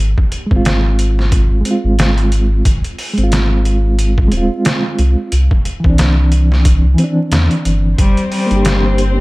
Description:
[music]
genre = trip hop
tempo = 90 BPM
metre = 4/4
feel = swing 57% on 16ths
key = unclear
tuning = A4 = 439 Hz
[part]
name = warm sub bass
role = bass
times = 0.0-9.2 s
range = Eb1 to E2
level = -13 LUFS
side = equal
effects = tube saturation
[part]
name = trip hop sampler-style drum kit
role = drums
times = 0.2-9.2 s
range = hi-hat, kick drum, snare drum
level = -16 LUFS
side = equal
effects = overdrive
[part]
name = mellow reed electric piano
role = accompaniment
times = 0.5-9.2 s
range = E3 to G4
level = -17 LUFS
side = right 1 dB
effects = fast tremolo, tape echo
[part]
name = rich cello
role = melody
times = 8.0-8.8 s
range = G3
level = -18 LUFS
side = left 2 dB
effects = tape echo
[part]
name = rich studio violin section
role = sustained chords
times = 8.0-9.2 s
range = C4 to C5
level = -23 LUFS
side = left 2 dB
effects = none
[part]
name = flickering grainy texture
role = texture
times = 8.0-9.2 s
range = C4 to C5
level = -26 LUFS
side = left 2 dB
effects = none
[sound]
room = digital ambience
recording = vinyl crackle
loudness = -11 LUFS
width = side -21 dB against mid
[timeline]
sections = 0.0-9.2 A section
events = none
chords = 0.0 Fm/Ab; 2.7 Ab6; 5.3 Cadd9; 8.0 Gm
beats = 0.65 1.32 1.99 | 2.65 3.32 3.99 4.65 | 5.32 5.99 6.65 7.32 | 7.99 8.65

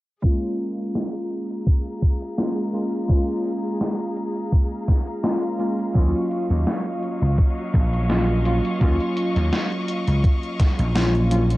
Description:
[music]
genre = vaporwave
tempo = 84 BPM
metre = 4/4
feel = swing 54% on 16ths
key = unclear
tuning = A4 = 439 Hz
[part]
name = warbly lo-fi synth keys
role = accompaniment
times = 0.2-11.6 s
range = Gb3 to F4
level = -24 LUFS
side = equal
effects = analog chorus, analog delay
[part]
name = bright studio string section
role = sustained chords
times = 0.2-11.6 s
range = Gb3 to Db6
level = -33 LUFS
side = equal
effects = none
[part]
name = electronic kick drum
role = drums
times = 0.2-10.8 s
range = none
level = -18 LUFS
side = equal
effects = none
[part]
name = gated 80s digital drum machine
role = drums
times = 0.2-11.6 s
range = hi-hat, snare drum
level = -27 LUFS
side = left 1 dB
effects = gated reverb, gated reverb snare
[part]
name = vintage slap bass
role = bass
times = 6.0-11.6 s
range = Bb1 to Eb2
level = -20 LUFS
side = equal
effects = none
[sound]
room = digital ambience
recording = dry, gritty hardware recording, transformer saturation, cassette tape, low-pass filter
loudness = -20 LUFS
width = side -18 dB against mid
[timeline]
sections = 0.2-11.6 A section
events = filter sweep 0.2-11.6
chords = 0.2 Bbm7/Ab; 6.0 Ebm9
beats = | 0.24 0.95 1.67 2.38 | 3.10 3.81 4.53 5.24 | 5.95 6.67 7.38 8.10 | 8.81 9.53 10.24 10.95

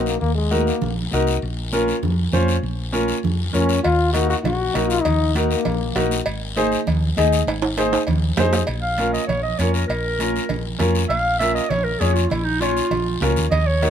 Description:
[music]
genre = latin, cumbia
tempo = 198 BPM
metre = 4/4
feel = straight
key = Bb minor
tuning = A4 = 443 Hz
[part]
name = mellow trombone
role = second line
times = 0.0-0.9, 3.5-6.1 s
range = Ab3 to Gb4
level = -22 LUFS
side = left 5 dB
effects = none
[part]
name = clear upright piano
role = accompaniment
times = 0.0-13.9 s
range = Db4 to Eb5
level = -23 LUFS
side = left 2 dB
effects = none
[part]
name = hollow-body short-scale fingered electric bass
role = bass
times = 0.0-13.9 s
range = Ab1 to F2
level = -22 LUFS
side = equal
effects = none
[part]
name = guiro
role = percussion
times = 0.1-13.9 s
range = none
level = -31 LUFS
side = left 6 dB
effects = none
[part]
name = congas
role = percussion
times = 0.2-13.9 s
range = none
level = -27 LUFS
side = right 5 dB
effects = none
[part]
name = cowbell and timbales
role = percussion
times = 3.8-13.9 s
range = none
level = -27 LUFS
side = right 3 dB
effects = none
[part]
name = warm clarinet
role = melody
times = 8.8-13.9 s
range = Eb4 to F5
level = -22 LUFS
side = right 2 dB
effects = none
[sound]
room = light reverb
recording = minimal, uncompressed stereo recording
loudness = -18 LUFS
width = side -9 dB against mid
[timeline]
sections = 0.0-8.7 A section; 8.7-13.9 B section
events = trombone solo 0.0-8.7; drum fill 7.5-8.7; clarinet solo 8.7-13.9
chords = 0.0 Ebm; 1.4 Bbm; 3.8 Ebm; 6.3 Ab; 8.7 Bbm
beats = | 0.22 0.52 0.82 1.12 | 1.43 1.73 2.03 2.33 | 2.63 2.94 3.24 3.54 | 3.84 4.15 4.45 4.75 | 5.05 5.36 5.66 5.96 | 6.26 6.56 6.87 7.17 | 7.47 7.77 8.08 8.38 | 8.68 8.98 9.29 9.59 | 9.89 10.19 10.50 10.80 | 11.10 11.40 11.71 12.01 | 12.31 12.61 12.92 13.22 | 13.52 13.82

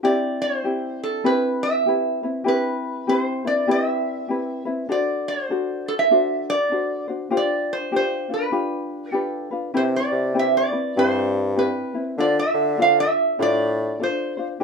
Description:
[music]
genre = Hawaiian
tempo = 99 BPM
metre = 4/4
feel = swing 61% on 8ths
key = C major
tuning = A4 = 440 Hz
[part]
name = metal-body resonator slide guitar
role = melody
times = 0.0-14.5 s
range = A4 to F5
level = -22 LUFS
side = right 2 dB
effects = none
[part]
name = ukulele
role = accompaniment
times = 0.0-14.6 s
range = C4 to C5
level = -24 LUFS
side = left 2 dB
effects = none
[part]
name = clear bassoon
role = bass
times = 9.8-14.6 s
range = G2 to D3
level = -24 LUFS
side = left 1 dB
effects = none
[sound]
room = moderate small room reverb, RT60 0.5 s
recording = minimal, uncompressed stereo recording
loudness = -20 LUFS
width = side -5 dB against mid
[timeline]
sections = 0.0-14.6 A section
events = none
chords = 0.0 Cmaj7; 4.9 D7; 7.3 G7sus4; 8.5 G7; 9.8 Cmaj7; 12.2 Dm7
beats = | 0.03 0.64 1.25 1.85 | 2.46 3.07 3.68 4.29 | 4.89 5.50 6.11 6.72 | 7.32 7.93 8.54 9.14 | 9.75 10.36 10.96 11.57 | 12.18 12.78 13.39 14.00 | 14.60

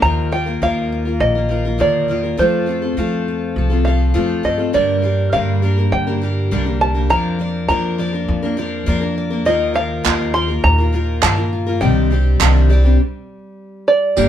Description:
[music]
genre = indie folk with a building arrangement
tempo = 102 BPM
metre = 4/4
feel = straight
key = G minor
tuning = A4 = 437 Hz
[part]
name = open-back banjo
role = melody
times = 0.0-14.3 s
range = C5 to C6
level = -18 LUFS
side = right 2 dB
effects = none
[part]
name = fingerpicked steel-string acoustic guitar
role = accompaniment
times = 0.0-14.3 s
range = G2 to D5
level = -25 LUFS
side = left 2 dB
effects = none
[part]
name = picked steel-string acoustic guitar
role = accompaniment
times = 0.0-14.3 s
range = G2 to Bb4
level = -21 LUFS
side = left 3 dB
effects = none
[part]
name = upright bass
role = bass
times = 0.0-14.3 s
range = G1 to G2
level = -18 LUFS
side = equal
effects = none
[part]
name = group handclap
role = percussion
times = 10.1-12.5 s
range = none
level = -18 LUFS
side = right 7 dB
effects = none
[part]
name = dark upright piano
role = accompaniment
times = 14.2-14.3 s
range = G1 to D5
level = -21 LUFS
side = right 1 dB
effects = none
[part]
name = clear upright piano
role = arpeggios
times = 14.2-14.3 s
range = G4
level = -20 LUFS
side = right 4 dB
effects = none
[part]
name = tambourine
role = percussion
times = 14.2 s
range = none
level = -27 LUFS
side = right 7 dB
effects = none
[sound]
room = light reverb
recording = band playing live in one room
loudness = -15 LUFS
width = side -10 dB against mid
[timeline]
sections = 0.0-4.7 A section; 4.7-14.2 B section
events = stop 13.0-14.2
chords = 0.0 Ebsus2; 2.4 F; 4.7 Gm; 7.1 Bb/F; 9.5 Ebsus2; 11.8 Cmadd9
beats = | 0.03 0.62 1.21 1.80 | 2.39 2.98 3.57 4.16 | 4.75 5.33 5.92 6.51 | 7.10 7.69 8.28 8.87 | 9.46 10.05 10.64 11.23 | 11.82 12.40 12.99 13.58 | 14.17

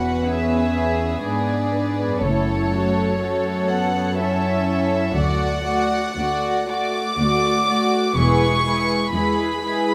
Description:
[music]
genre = classical, slow romantic movement for string orchestra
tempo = 61 BPM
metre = 3/4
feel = rubato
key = unclear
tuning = A4 = 440 Hz
[part]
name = warm symphonic violin section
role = melody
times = 0.0-9.9 s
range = C#5 to D6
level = -27 LUFS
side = equal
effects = none
[part]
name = warm symphonic violin section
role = second line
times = 0.0-9.9 s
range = F#4 to D5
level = -27 LUFS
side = equal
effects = none
[part]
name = dark symphonic viola section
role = accompaniment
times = 0.0-9.9 s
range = G#3 to F#4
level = -27 LUFS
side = equal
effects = none
[part]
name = warm symphonic cello section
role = bass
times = 0.0-9.9 s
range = D2 to G#2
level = -26 LUFS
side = equal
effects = none
[part]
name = warm symphonic double bass section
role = bass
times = 0.0-9.0 s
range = E1 to D2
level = -27 LUFS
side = equal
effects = none
[sound]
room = light reverb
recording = close, detailed microphones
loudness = -21 LUFS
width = mono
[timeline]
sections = 0.0-9.9 A section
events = none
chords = 0.0 E13; 2.2 F#m7; 5.2 D; 8.2 E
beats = 0.25 1.24 | 2.23 3.22 4.19 | 5.16 6.16 7.19 | 8.17 9.15

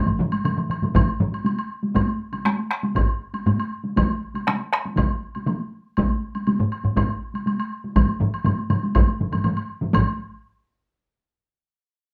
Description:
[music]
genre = japanese traditional, taiko drum ensemble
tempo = 120 BPM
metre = 4/4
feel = straight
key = none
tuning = none
[part]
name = taiko ensemble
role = percussion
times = 0.1-10.4 s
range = none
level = -27 LUFS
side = equal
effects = none
[part]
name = taiko ensemble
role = percussion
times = 0.1-10.4 s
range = none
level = -27 LUFS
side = equal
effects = none
[part]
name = taiko ensemble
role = percussion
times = 0.2-10.2 s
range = none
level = -27 LUFS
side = equal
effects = none
[part]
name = woodblock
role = percussion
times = 0.3-10.2 s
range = none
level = -33 LUFS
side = equal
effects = none
[part]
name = taiko ensemble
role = percussion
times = 0.9-10.2 s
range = none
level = -25 LUFS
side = equal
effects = none
[sound]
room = moderate studio ambience, RT60 0.5 s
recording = none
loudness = -23 LUFS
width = mono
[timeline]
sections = 0.0-10.0 A section; 10.0-11.9 B section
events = none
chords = none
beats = 0.45 0.95 1.46 | 1.96 2.46 2.97 3.47 | 3.97 4.47 4.97 5.47 | 5.97 6.47 6.97 7.47 | 7.97 8.46 8.96 9.46 | 9.95

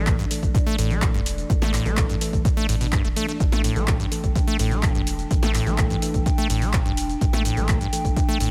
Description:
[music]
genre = acid house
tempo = 126 BPM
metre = 4/4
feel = straight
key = unclear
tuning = A4 = 439 Hz
[part]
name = warbly tape-like pad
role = sustained chords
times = 0.0-8.5 s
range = D4 to G5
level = -35 LUFS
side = equal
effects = chorus, built-in reverb, sidechain pumping
[part]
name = acid bass, saw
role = riff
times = 0.0-8.5 s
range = G2 to A3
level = -30 LUFS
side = equal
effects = none
[part]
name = mellow tine electric piano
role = stabs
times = 0.0-8.5 s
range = E3 to A4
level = -33 LUFS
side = equal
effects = dub echo
[part]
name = saturated sub bass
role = bass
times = 0.0-8.5 s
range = E1 to A1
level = -29 LUFS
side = equal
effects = sidechain pumping
[part]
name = electronic kick drum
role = drums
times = 0.1-8.3 s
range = none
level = -25 LUFS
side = equal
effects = none
[part]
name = punchy analog drum machine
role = drums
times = 0.1-8.5 s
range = handclaps, hi-hat, shaker, snare drum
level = -32 LUFS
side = equal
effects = none
[sound]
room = little or no reverb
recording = none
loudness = -22 LUFS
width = mono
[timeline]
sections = 0.0-8.5 A section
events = none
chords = 0.0 A5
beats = 0.07 0.55 1.02 | 1.50 1.97 2.45 2.93 | 3.40 3.88 4.36 4.83 | 5.31 5.78 6.26 6.74 | 7.21 7.69 8.16

